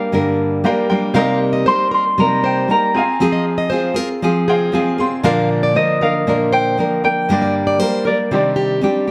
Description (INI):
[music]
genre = pop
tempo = 117 BPM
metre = 4/4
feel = straight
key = C minor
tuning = A4 = 440 Hz
[part]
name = concert harp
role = melody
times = 0.0-9.1 s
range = D5 to C6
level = -21 LUFS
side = equal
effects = none
[part]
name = bright upright piano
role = accompaniment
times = 0.0-9.1 s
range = Bb3 to C6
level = -27 LUFS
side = equal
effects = none
[part]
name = nylon-string guitar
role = accompaniment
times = 0.0-9.1 s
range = G2 to Bb4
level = -19 LUFS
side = equal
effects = none
[part]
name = fingerpicked plugged-in steel-string acoustic guitar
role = arpeggios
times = 1.1-8.8 s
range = G4 to F5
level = -24 LUFS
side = equal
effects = none
[sound]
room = moderate studio reverb, RT60 0.9 s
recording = none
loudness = -16 LUFS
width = mono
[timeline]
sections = 0.0-9.1 A section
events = upright piano fill 0.4-1.2, 4.2-5.2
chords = 0.0 Gm; 1.2 Cm7; 2.9 Fm; 5.2 Bb; 7.3 Gm; 8.3 Cmadd9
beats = 0.13 0.64 | 1.15 1.67 2.18 2.69 | 3.20 3.71 4.22 4.73 | 5.25 5.76 6.27 6.78 | 7.29 7.80 8.31 8.82